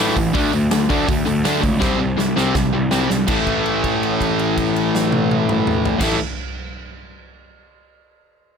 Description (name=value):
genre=punk rock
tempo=163 BPM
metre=4/4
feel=straight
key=unclear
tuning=A4 = 440 Hz
part: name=distorted electric guitar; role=riff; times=0.0-6.2 s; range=A2 to D4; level=-21 LUFS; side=right 12 dB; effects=overdrive
part: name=overdriven electric guitar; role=riff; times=0.0-6.2 s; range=A2 to D4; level=-20 LUFS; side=left 11 dB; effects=none
part: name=fuzz picked electric bass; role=bass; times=0.0-6.2 s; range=A1 to D2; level=-23 LUFS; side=right 1 dB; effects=overdrive
part: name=big rock drum kit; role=drums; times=0.2-6.1 s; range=crash cymbal, hi-hat, kick drum, snare drum, toms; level=-23 LUFS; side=right 1 dB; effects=none
room=light reverb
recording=none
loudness=-16 LUFS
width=side -6 dB against mid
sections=0.0-3.3 A section; 3.3-6.2 B section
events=drum fill 1.8-3.3; held note 3.3-6.0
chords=0.3 D5; 1.8 C5; 3.3 A5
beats=| 0.34 0.71 1.08 1.45 | 1.82 2.18 2.55 2.92 | 3.29 3.65 4.02 4.39 | 4.76 5.12 5.49 5.86